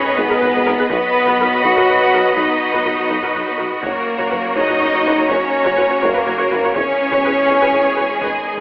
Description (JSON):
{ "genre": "cinematic, epic orchestral film score", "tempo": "82 BPM (dotted quarters)", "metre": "6/8", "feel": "straight", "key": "unclear", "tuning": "A4 = 440 Hz", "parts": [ { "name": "warm symphonic violin section", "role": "melody", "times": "0.0-8.6 s", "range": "G#4 to F#5", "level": "-23 LUFS", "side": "left 1 dB", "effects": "none" }, { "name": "warm symphonic violin section", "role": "second line", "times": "0.0-8.6 s", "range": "C#5 to B5", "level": "-22 LUFS", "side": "left 1 dB", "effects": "none" }, { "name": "warm symphonic viola section", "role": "accompaniment", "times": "0.0-8.6 s", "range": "F#4 to C#5", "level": "-22 LUFS", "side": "equal", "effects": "none" }, { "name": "dark trombone section", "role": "sustained chords", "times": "0.0-8.6 s", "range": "D#3 to C#4", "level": "-26 LUFS", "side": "equal", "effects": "none" }, { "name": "mellow French horn section", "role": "sustained chords", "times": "0.0-8.6 s", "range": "G#3 to F#4", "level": "-19 LUFS", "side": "equal", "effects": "none" }, { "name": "rich symphonic string section", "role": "sustained chords", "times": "0.0-8.6 s", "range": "G#3 to D#5", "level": "-22 LUFS", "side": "equal", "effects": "none" }, { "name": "rich symphonic cello section", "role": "bass", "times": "0.0-8.6 s", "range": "G#3 to F#4", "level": "-22 LUFS", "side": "equal", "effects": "none" }, { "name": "rich symphonic double bass section", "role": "bass", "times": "0.0-8.6 s", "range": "E1 to B1", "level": "-33 LUFS", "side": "right 1 dB", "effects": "none" }, { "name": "mellow tuba", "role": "bass", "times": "0.2-8.3 s", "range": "E1 to B1", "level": "-28 LUFS", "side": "equal", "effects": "none" }, { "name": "solo taiko drums", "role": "drums", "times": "0.2-8.6 s", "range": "none", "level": "-37 LUFS", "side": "equal", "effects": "none" }, { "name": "timpani", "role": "percussion", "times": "8.2-8.6 s", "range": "none", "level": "barely audible", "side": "none", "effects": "none" } ], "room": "wet scoring stage reverb, RT60 1.8 s", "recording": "telephone sound", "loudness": "-13 LUFS", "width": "side -22 dB against mid", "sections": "0.0-8.6 A section", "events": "none", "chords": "0.0 G#m; 0.9 B; 3.8 F#; 6.8 C#m/E" }